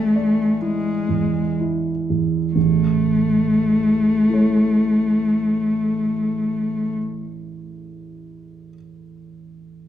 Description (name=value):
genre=classical, romantic duo for cello and grand piano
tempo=28-35 BPM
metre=3/4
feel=rubato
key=A major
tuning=A4 = 437 Hz
part: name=rich cello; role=melody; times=0.0-6.9 s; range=G#3 to A3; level=-18 LUFS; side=left 2 dB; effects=none
part: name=dark grand piano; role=accompaniment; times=0.0-9.9 s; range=A1 to G#5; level=-24 LUFS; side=right 6 dB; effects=none
room=moderate recital hall reverb, RT60 1.6 s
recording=minimal, uncompressed stereo recording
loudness=-17 LUFS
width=side -11 dB against mid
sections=0.0-2.5 A section; 2.5-7.9 B section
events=slowing down 0.0-2.5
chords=0.0 E7/A; 2.5 A